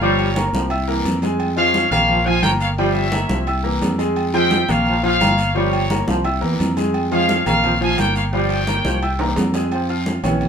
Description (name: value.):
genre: latin, salsa.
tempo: 173 BPM.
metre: 4/4.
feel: straight.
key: unclear.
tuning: A4 = 440 Hz.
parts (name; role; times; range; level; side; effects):
bright trumpet section; melody; 0.0-9.3 s; Bb4 to Ab5; -20 LUFS; left 1 dB; none.
mellow trombone section; second line; 0.0-10.5 s; E3 to Ab3; -24 LUFS; right 1 dB; none.
clear baby grand piano; accompaniment; 0.0-10.5 s; F3 to F6; -22 LUFS; left 1 dB; none.
fingered electric bass; bass; 0.0-10.5 s; G1 to F2; -22 LUFS; right 1 dB; none.
congas; percussion; 0.0-10.5 s; none; -25 LUFS; equal; none.
guiro; percussion; 0.0-10.5 s; none; -34 LUFS; left 3 dB; none.
agogo bells and timbales; percussion; 0.2-10.5 s; none; -29 LUFS; right 4 dB; none.
room: moderate studio reverb, RT60 0.6 s.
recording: minimal, uncompressed stereo recording.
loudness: -16 LUFS.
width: side -7 dB against mid.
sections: 0.0-9.7 A section.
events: drum fill 9.2-9.7.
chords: 0.0 Gm7b5; 0.7 C7; 1.4 Fm; 2.1 Bbm; 2.8 Gm7b5; 3.5 C7; 4.2 Fmadd9; 4.9 Bbm; 5.6 Gm7b5; 6.2 C7; 6.9 Fm; 7.6 Bbm; 8.3 Gm7b5; 9.0 C7; 9.7 Bbm.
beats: | 0.02 0.36 0.71 1.05 | 1.40 1.74 2.09 2.44 | 2.78 3.13 3.47 3.82 | 4.17 4.51 4.86 5.21 | 5.55 5.90 6.25 6.59 | 6.94 7.29 7.63 7.98 | 8.33 8.68 9.03 9.37 | 9.72 10.07 10.42.